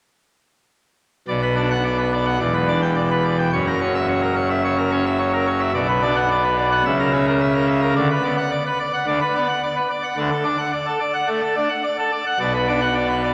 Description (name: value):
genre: classical, organ toccata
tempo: 108 BPM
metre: 4/4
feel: straight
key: B minor, D major from 10.2 s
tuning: A4 = 441 Hz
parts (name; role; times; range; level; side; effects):
- pipe organ, full organ; solo; 1.3-13.3 s; E1 to G5; -20 LUFS; equal; none
room: wet church reverb, RT60 2.8 s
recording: none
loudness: -20 LUFS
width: mono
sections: 1.3-13.3 A section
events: none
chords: 1.3 Bm; 2.4 Em7; 3.5 F#7; 5.7 Bm; 6.9 A#dim/C#; 8.0 Bm/D; 10.2 D; 12.4 Bm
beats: | 1.28 1.84 2.41 2.97 | 3.52 4.08 4.64 5.20 | 5.75 6.30 6.85 7.41 | 7.96 8.51 9.07 9.62 | 10.18 10.73 11.29 11.84 | 12.40 12.96